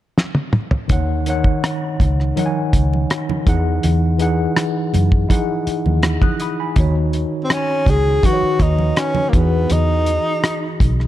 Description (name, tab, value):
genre	lush 1970s-style soul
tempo	82 BPM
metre	4/4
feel	straight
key	unclear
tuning	A4 = 438 Hz
part	cloth-damped thuddy drum kit	drums	0.2-11.1 s	hi-hat, kick drum, rim click, snare drum, toms	-18 LUFS	equal	none
part	tine electric piano	accompaniment	0.9-11.1 s	D#3 to F#6	-21 LUFS	left 1 dB	medium stereo tremolo
part	vintage muted fingered electric bass	bass	0.9-11.1 s	B1 to F#2	-18 LUFS	equal	none
part	congas	percussion	0.9-11.0 s	none	-27 LUFS	right 6 dB	none
part	breathy tenor saxophone	melody	7.4-10.8 s	A#3 to G#4	-19 LUFS	equal	none
room	light reverb, small room ambience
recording	dark, warm production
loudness	-15 LUFS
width	side -13 dB against mid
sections	0.9-6.8 A section; 6.8-11.1 B section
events	drum fill 0.2-0.9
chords	0.0 N.C.; 0.9 D#m7; 3.5 Emaj9; 6.8 D#m7; 9.3 Emaj9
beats	0.17 | 0.90 1.64 2.37 3.10 | 3.84 4.57 5.31 6.04 | 6.77 7.51 8.24 8.97 | 9.71 10.44